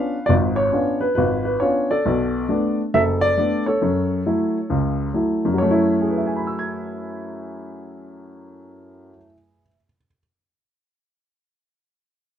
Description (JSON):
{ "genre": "solo jazz", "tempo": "136 BPM", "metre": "4/4", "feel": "swing 66% on 8ths", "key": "F# minor", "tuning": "A4 = 440 Hz", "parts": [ { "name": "warm baby grand piano", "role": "solo", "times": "0.0-10.2 s", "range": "F#1 to G#6", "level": "-19 LUFS", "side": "equal", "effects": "none" } ], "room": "light reverb", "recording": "dark, warm production", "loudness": "-18 LUFS", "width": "side -9 dB against mid", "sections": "0.0-5.6 A section; 5.6-9.1 B section", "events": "none", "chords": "0.0 C#7b9; 2.0 Bm7; 3.8 F#m7", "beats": "| 0.29 0.73 1.17 1.61 | 2.05 2.49 2.93 3.37 | 3.81 4.25 4.70 5.14 | 5.58 6.02 6.46 6.90 | 7.34 7.78 8.22 8.66" }